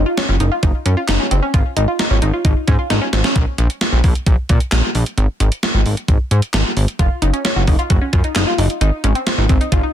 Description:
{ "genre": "synth-pop", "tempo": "132 BPM", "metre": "4/4", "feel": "straight", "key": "unclear", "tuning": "A4 = 440 Hz", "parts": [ { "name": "analog pluck", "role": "arpeggios", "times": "0.0-3.3, 7.0-9.9 s", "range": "C4 to Gb4", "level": "-21 LUFS", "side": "left 1 dB", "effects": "chorus, phaser, ping-pong delay" }, { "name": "chorused synth bass", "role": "bass", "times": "0.0-9.8 s", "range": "Gb1 to Bb2", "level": "-16 LUFS", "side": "equal", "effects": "none" }, { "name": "gated 80s digital drum machine", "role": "drums", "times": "0.2-9.8 s", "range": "handclaps, hi-hat, kick drum, snare drum", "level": "-17 LUFS", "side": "equal", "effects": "gated reverb, gated reverb snare" } ], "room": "little or no reverb", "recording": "dense, heavily limited modern master", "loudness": "-14 LUFS", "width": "side -10 dB against mid", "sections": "0.0-3.4 A section; 3.4-9.9 B section", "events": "drum fill 2.9-3.4", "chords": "0.0 Gb5; 1.5 Ab5; 3.4 N.C.; 7.0 Gb5; 8.8 Ab" }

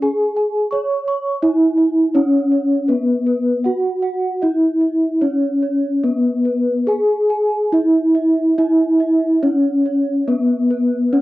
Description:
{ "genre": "gamelan", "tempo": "70-86 BPM", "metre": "4/4", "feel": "straight", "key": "C# slendro", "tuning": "A4 = 444 Hz", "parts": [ { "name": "gamelan-type bronze metallophone", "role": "melody", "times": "0.0-11.2 s", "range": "B3-25c to C#5", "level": "-15 LUFS", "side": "equal", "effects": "none" }, { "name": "gamelan-type bronze metallophone", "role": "arpeggios", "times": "0.0-11.2 s", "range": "B4-25c to C#6", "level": "-25 LUFS", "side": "right 1 dB", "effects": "cassette tape" } ], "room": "wet booth ambience, RT60 0.2 s", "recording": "home recording on cassette, nothing above 10.4 kHz", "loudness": "-15 LUFS", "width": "side -17 dB against mid", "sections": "0.0-6.9 A section; 6.9-11.2 B section", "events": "none", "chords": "none" }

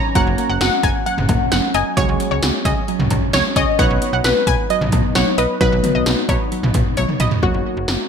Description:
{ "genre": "synth-pop", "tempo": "132 BPM", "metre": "4/4", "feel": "straight", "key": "B major", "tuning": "A4 = 439 Hz", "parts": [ { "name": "funky polysynth comp", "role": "melody", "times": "0.0-8.1 s", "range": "F#4 to A#5", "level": "-21 LUFS", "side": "left 2 dB", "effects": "chorus, ping-pong delay" }, { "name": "clear baby grand piano", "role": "accompaniment", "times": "0.0-8.1 s", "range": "F#3 to D#5", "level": "-27 LUFS", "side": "right 2 dB", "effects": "none" }, { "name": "glassy FM pad", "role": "sustained chords", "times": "0.0-7.4 s", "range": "F#3 to D#4", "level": "-26 LUFS", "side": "equal", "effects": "ensemble chorus, built-in reverb" }, { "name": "soft round pluck", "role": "arpeggios", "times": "0.0-8.1 s", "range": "F#3 to B5", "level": "-26 LUFS", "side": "right 2 dB", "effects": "chorus, ping-pong delay" }, { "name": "analog pluck", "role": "second line", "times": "0.2-7.3 s", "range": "B4 to G#5", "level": "-24 LUFS", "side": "left 2 dB", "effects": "chorus, ping-pong delay" }, { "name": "slap-like FM bass", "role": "bass", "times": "0.2-8.0 s", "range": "F#1 to C#2", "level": "-22 LUFS", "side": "equal", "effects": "none" }, { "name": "80s electronic pad drums", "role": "drums", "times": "0.2-8.0 s", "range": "cowbell, hi-hat, kick drum, snare drum, toms", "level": "-19 LUFS", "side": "equal", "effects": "gated reverb on snare and toms, gated reverb" } ], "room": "moderate plate reverb, RT60 2.0 s", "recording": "bright 1980s-style digital production", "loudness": "-15 LUFS", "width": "side -7 dB against mid", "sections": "0.0-7.4 A section", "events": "drum fill 7.0-7.4", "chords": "0.2 F#; 2.0 C#sus4; 3.8 B; 7.4 F#" }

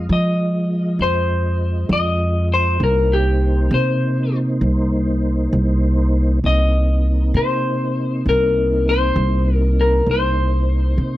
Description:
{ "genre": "slow blues", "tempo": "66 BPM (dotted quarters)", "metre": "12/8", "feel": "straight", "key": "C minor", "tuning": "A4 = 440 Hz", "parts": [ { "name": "clean lap steel guitar", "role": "melody", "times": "0.0-11.2 s", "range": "G4 to Eb5", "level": "-20 LUFS", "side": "left 2 dB", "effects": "slapback echo" }, { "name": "mellow tonewheel organ", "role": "sustained chords", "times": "0.0-11.2 s", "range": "Ab3 to Eb5", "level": "-25 LUFS", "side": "equal", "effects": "slow rotary speaker, chorus vibrato" }, { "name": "upright bass", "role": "bass", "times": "0.0-11.2 s", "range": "C2 to F3", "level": "-17 LUFS", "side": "equal", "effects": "none" } ], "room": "little or no reverb", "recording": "dry, close 1970s-style studio recording", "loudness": "-15 LUFS", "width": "side -15 dB against mid", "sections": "0.0-11.2 A section", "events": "none", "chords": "0.0 Fm7; 2.8 Cm7" }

